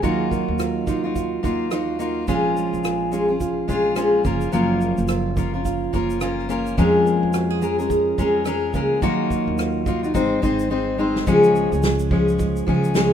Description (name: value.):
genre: acoustic pop.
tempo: 107 BPM.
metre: 4/4.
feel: swing 60% on 16ths.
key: Db major.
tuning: A4 = 439 Hz.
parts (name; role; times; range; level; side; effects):
fingerpicked steel-string acoustic guitar; accompaniment; 0.0-13.1 s; F2 to C5; -20 LUFS; left 3 dB; none.
nylon-string guitar; arpeggios; 0.0-13.1 s; F3 to Ab4; -26 LUFS; right 9 dB; none.
upright bass; bass; 0.0-13.1 s; Gb1 to F2; -28 LUFS; right 1 dB; none.
natural country drum kit; drums; 0.0-13.1 s; kick drum, rim click, shaker, snare drum; -27 LUFS; right 1 dB; none.
room: light reverb.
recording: minimal, uncompressed stereo recording.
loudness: -18 LUFS.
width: side -9 dB against mid.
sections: 0.0-11.3 A section; 11.3-13.1 B section.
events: drum fill 10.7-11.3.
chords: 0.0 Ebmadd9; 2.3 Bbm7; 4.3 Gbmaj7; 6.8 Db6/F; 9.0 Ebmadd9; 10.1 Ab; 11.3 Db.